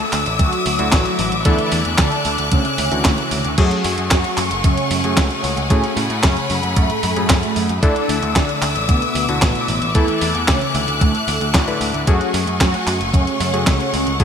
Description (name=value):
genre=italo disco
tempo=113 BPM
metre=4/4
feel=straight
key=unclear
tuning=A4 = 436 Hz
part: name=mellow synth brass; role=melody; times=0.0-14.2 s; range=A2 to A4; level=-23 LUFS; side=right 1 dB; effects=chorus, phaser, cassette tape, ping-pong delay
part: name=bright studio string section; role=sustained chords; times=0.0-14.2 s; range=A3 to F#6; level=-22 LUFS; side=left 2 dB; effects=none
part: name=warm electric grand piano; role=stabs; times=0.0-14.2 s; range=D3 to B4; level=-25 LUFS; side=left 3 dB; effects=ping-pong delay
part: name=clean 12-bit digital drum machine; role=drums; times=0.0-14.2 s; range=crash cymbal, handclaps, hi-hat, snare drum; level=-22 LUFS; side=right 1 dB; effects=none
part: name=picked electric bass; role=bass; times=0.1-14.2 s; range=F#1 to A2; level=-23 LUFS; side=equal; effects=none
part: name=electronic kick drum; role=drums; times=0.4-14.2 s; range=none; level=-17 LUFS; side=equal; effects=none
room=moderate lush hall reverb, RT60 2.6 s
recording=bright 1980s-style digital production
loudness=-15 LUFS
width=side -8 dB against mid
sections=0.0-14.2 A section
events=none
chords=0.0 Dsus2; 3.6 F#madd9; 7.8 Dsus2; 12.1 F#madd9